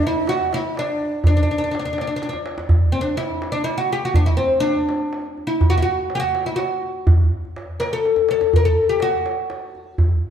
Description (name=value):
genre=Persian modal ensemble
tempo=83 BPM (dotted quarters)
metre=6/8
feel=straight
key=D dastgah homayun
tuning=A4 = 445 Hz
part: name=oud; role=melody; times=0.0-10.1 s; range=C4 to Bb4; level=-20 LUFS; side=left 1 dB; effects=none
part: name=breathy mellow ney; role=second line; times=0.0-2.4 s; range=D5 to Eb5+47c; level=-28 LUFS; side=left 2 dB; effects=tape echo
part: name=tombak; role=percussion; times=0.2-10.1 s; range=none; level=-19 LUFS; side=right 1 dB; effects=none
room=wet recital hall reverb, RT60 1.4 s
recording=dark, warm production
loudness=-17 LUFS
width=side -9 dB against mid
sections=0.0-2.7 A section; 2.7-10.3 B section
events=drum fill 2.2-2.7, 8.0-8.5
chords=none